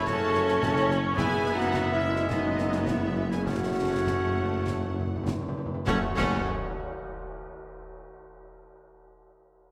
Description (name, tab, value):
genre	cinematic, heroic adventure film score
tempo	99-109 BPM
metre	4/4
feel	straight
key	F# dorian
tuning	A4 = 439 Hz
part	rich studio violin section	melody	0.0-6.5 s	D#5 to A5	-44 LUFS	equal	none
part	bright clarinet	second line	0.0-6.4 s	B3 to F#4	-38 LUFS	equal	none
part	bright studio violin section	second line	0.0-6.5 s	D#5 to A5	-45 LUFS	equal	none
part	mellow hollow baroque flute	second line	0.0-6.5 s	D#5 to A5	-41 LUFS	equal	none
part	rich studio viola section	accompaniment	0.0-6.5 s	A3 to C#4	-35 LUFS	equal	none
part	mellow French horn section	sustained chords	0.0-6.1 s	D#4 to A4	-34 LUFS	equal	none
part	warm trombone section	sustained chords	0.0-6.1 s	A2 to A3	-42 LUFS	equal	none
part	warm trumpet	stabs	0.0-6.4 s	C#5 to E5	-37 LUFS	equal	none
part	clear studio double bass section	bass	0.1-6.5 s	F#1	-38 LUFS	equal	none
part	mellow tuba	bass	0.1-6.4 s	F#1	-36 LUFS	equal	none
part	warm symphonic cello section	bass	0.1-6.5 s	F#2	-38 LUFS	equal	none
part	concert snare drum, concert bass drum and clash cymbals	drums	0.1-6.5 s	none	-39 LUFS	equal	none
part	timpani	percussion	1.2-6.4 s	F#2	-38 LUFS	equal	none
part	tam-tam	percussion	5.9-8.5 s	none	-42 LUFS	equal	none
room	wet scoring stage reverb, RT60 1.9 s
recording	none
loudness	-27 LUFS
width	mono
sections	0.0-5.9 A section; 5.9-8.2 B section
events	slowing down 0.1-5.9; timpani fill 3.5-5.9; band accent 5.9-6.5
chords	0.0 F#m; 1.2 E/F#; 3.5 F#m